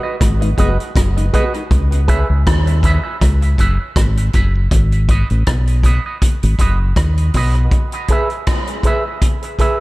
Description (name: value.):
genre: dub reggae.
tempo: 80 BPM.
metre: 4/4.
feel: swing 56% on 16ths.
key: unclear.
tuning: A4 = 440 Hz.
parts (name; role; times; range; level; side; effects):
electric guitar with an envelope filter; accompaniment; 0.0-9.8 s; F#4 to E5; -22 LUFS; right 3 dB; spring reverb, high-pass filter, dub echo.
fingered electric bass; bass; 0.2-7.7 s; F#1 to D#2; -14 LUFS; equal; none.
vintage drum kit; drums; 0.2-9.8 s; hi-hat, kick drum, rim click; -16 LUFS; equal; none.
mellow tonewheel organ; accompaniment; 0.4-7.6 s; G#2 to C#4; -29 LUFS; left 2 dB; overdrive, slow rotary speaker, high-pass filter, dub echo.
room: small room ambience.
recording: echo-heavy mix.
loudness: -13 LUFS.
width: side -20 dB against mid.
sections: 0.0-7.7 A section; 7.7-9.8 B section.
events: filter sweep 0.0-7.7; break 7.7-9.8.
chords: 0.0 G#m7; 1.7 C#m7; 4.7 G#m7; 7.7 G#m.